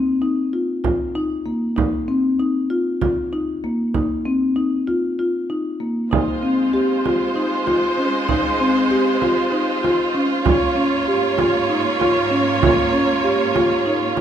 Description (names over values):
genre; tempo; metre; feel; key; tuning
contemporary instrumental, chamber music in an uneven meter; 194 BPM (eighths); 7/8; straight; Ab major; A4 = 441 Hz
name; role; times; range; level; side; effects
marimba with soft mallets; arpeggios; 0.0-14.2 s; Bb3 to G4; -19 LUFS; left 1 dB; none
frame drum; percussion; 0.8-14.2 s; none; -24 LUFS; right 5 dB; none
rich symphonic string section; sustained chords; 6.1-14.2 s; Ab2 to Db5; -20 LUFS; right 3 dB; none
room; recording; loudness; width
moderate recital hall reverb, RT60 1.6 s; none; -17 LUFS; side -9 dB against mid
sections
0.0-6.1 A section; 6.1-14.2 B section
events
none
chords
0.0 Bbsus24; 6.1 Ab6; 10.5 Bbm/Ab